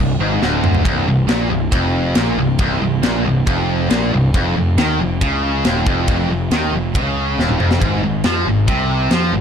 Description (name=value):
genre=heavy metal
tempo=138 BPM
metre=4/4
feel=straight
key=C minor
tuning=A4 = 437 Hz
part: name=heavy high-gain guitar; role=riff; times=0.0-9.4 s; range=C2 to F3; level=-17 LUFS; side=equal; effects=distortion
part: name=fuzz picked electric bass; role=bass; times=0.0-9.4 s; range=C1 to F2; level=-20 LUFS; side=equal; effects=overdrive
part: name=tight metal drum kit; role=drums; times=0.4-9.2 s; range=kick drum, ride cymbal, snare drum, toms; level=-20 LUFS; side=equal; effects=none
room=little or no reverb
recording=dark, warm production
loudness=-14 LUFS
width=side -7 dB against mid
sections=0.9-9.4 A section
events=drum fill 0.4-0.9, 7.4-7.8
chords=0.0 C5; 0.9 C7sus4; 4.3 Dbadd9; 7.8 Ab6